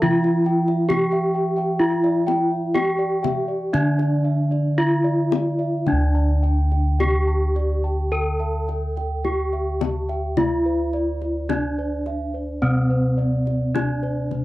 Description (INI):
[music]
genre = Javanese gamelan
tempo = 53-71 BPM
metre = 4/4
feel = straight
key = D slendro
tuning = A4 = 440 Hz
[part]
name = gamelan-type bronze metallophone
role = melody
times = 0.0-14.4 s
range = C4-40c to A4+20c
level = -23 LUFS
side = equal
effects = none
[part]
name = gamelan-type bossed gongs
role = arpeggios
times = 0.0-14.3 s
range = C5-40c to A5+20c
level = -33 LUFS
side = left 5 dB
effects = none
[part]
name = gamelan-type bronze metallophone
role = arpeggios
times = 0.0-14.4 s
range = C5-40c to A5+20c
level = -31 LUFS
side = right 6 dB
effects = none
[part]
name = gamelan-type bossed gongs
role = bass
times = 0.0-14.4 s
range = D2 to E4+40c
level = -22 LUFS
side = equal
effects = none
[part]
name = kendang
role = percussion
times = 0.0-14.4 s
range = none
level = -28 LUFS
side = left 8 dB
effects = none
[sound]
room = little or no reverb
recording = dry, close 1970s-style studio recording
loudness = -19 LUFS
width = side -17 dB against mid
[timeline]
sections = 0.0-5.9 A section; 5.9-14.4 B section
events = none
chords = none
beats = 0.04 0.90 | 1.80 2.75 3.74 4.78 | 5.87 7.00 8.12 9.25 | 10.38 11.50 12.63 13.75